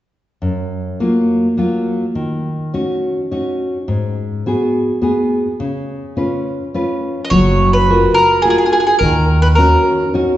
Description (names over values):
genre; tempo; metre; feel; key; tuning
italian folk, Italian serenade; 105 BPM; 3/4; straight; F# major; A4 = 439 Hz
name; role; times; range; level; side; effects
nylon-string guitar; accompaniment; 0.4-10.4 s; F#2 to B4; -16 LUFS; left 1 dB; none
mandolin; melody; 7.2-10.1 s; G#4 to D#5; -14 LUFS; right 1 dB; none
upright bass; bass; 7.3-9.7 s; F#1 to D#2; -16 LUFS; equal; none
room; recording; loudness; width
wet recital hall reverb, RT60 1.8 s; heard from further back in the room, nothing above 7.9 kHz; -13 LUFS; side -13 dB against mid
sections
0.4-7.3 A section; 7.3-10.4 B section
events
none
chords
0.4 F#maj7; 2.2 D#m7; 3.9 G#m7; 5.6 C#7; 7.3 F#maj7; 9.0 D#m7